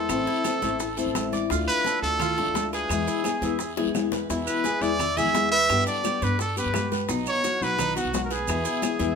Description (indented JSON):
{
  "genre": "latin, Cuban son and guajira",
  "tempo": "172 BPM",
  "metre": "4/4",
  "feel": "straight",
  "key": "unclear",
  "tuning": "A4 = 438 Hz",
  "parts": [
    { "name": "bright trumpet", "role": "melody", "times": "0.0-9.2 s", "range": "F#4 to E5", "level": "-25 LUFS", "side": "right 2 dB", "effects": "none" },
    { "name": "flamenco guitar", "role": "accompaniment", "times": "0.0-9.2 s", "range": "B2 to G4", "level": "-28 LUFS", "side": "left 7 dB", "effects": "none" },
    { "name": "Cuban tres", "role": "arpeggios", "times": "0.0-9.2 s", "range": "D4 to E5", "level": "-32 LUFS", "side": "right 4 dB", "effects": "none" },
    { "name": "upright bass", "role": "bass", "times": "0.0-9.2 s", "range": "A1 to G2", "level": "-33 LUFS", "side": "right 1 dB", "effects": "none" },
    { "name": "bongos", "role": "percussion", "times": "0.1-9.0 s", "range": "none", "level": "-34 LUFS", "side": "left 7 dB", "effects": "none" },
    { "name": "claves", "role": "percussion", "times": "0.1-9.0 s", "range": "none", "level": "-38 LUFS", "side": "right 6 dB", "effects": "none" },
    { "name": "congas", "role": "percussion", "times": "0.1-9.2 s", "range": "none", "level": "-35 LUFS", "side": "equal", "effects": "none" },
    { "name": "guiro", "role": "percussion", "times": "0.1-9.2 s", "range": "none", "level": "-40 LUFS", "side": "left 5 dB", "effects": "none" },
    { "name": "maracas", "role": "percussion", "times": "0.1-9.2 s", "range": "none", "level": "-37 LUFS", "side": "right 7 dB", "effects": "none" }
  ],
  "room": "moderate studio reverb, RT60 0.8 s",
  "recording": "minimal, uncompressed stereo recording",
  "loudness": "-22 LUFS",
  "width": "side -6 dB against mid",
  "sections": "0.0-9.2 A section",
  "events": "drum fill 3.8-4.3",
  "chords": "0.1 Am; 1.5 Dm; 2.9 E; 5.7 G; 7.1 B; 8.5 E"
}